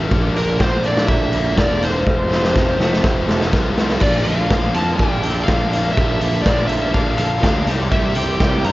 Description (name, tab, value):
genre	indie rock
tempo	123 BPM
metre	4/4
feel	straight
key	unclear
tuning	A4 = 437 Hz
part	high-gain distorted guitar	riff	0.0-8.7 s	F2 to G4	-25 LUFS	left 4 dB	distortion
part	overdriven electric guitar	riff	0.0-8.7 s	F2 to A4	-26 LUFS	right 4 dB	ensemble chorus, tape echo
part	fuzz picked electric bass	bass	0.0-8.7 s	E1 to G2	-22 LUFS	equal	overdrive
part	raw garage drum kit	drums	0.1-8.7 s	crash cymbal, hi-hat, kick drum, snare drum	-18 LUFS	equal	none
part	smooth overdriven lead guitar	melody	0.4-8.7 s	Bb4 to Bb5	-22 LUFS	equal	tape echo
part	string machine, cellos	sustained chords	7.9-8.7 s	E4 to G5	-30 LUFS	equal	none
room	studio reverb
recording	worn, warbling old tape, cassette tape, warbly pitch drift, nothing above 7.5 kHz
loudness	-15 LUFS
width	side -18 dB against mid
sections	0.0-4.0 A section; 4.0-8.7 B section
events	drum fill 2.1-4.0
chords	0.1 Bb; 2.1 F; 4.0 Bbmaj7; 7.7 C7